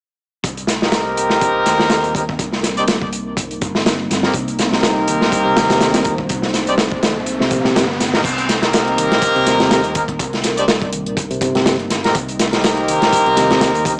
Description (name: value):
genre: breakbeat, breaks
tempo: 123 BPM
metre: 4/4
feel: swing 56% on 16ths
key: C minor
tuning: A4 = 438 Hz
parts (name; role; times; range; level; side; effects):
- dark analog pad; sustained chords; 0.4-14.0 s; G3 to Eb5; -27 LUFS; equal; chorus, vintage 12-bit sampler grit, sidechain pumping
- overdriven picked electric bass; bass; 0.4-14.0 s; G1 to Eb2; -32 LUFS; equal; low-pass filter
- crunchy breakbeat drum kit; drums; 0.4-14.0 s; crash cymbal, hi-hat, kick drum, snare drum; -20 LUFS; equal; none
- clear horn section; stabs; 0.8-13.9 s; Bb3 to D5; -20 LUFS; equal; vintage 12-bit sampler grit, low-pass filter, tape echo
- reed electric piano; riff; 4.3-13.7 s; Bb2 to Eb3; -24 LUFS; equal; vintage 12-bit sampler grit, tape echo
- riser; sound effects; 6.2-8.2 s; none; -29 LUFS; equal; none
- electronic hi-hat; drums; 8.2-14.0 s; none; -32 LUFS; equal; overdrive
room: light reverb, small room ambience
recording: small speaker sound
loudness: -17 LUFS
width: mono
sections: 0.4-8.2 A section; 8.2-14.0 B section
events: filter sweep on horn section 0.4-8.2; riser 6.2-8.2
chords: 0.4 Cm7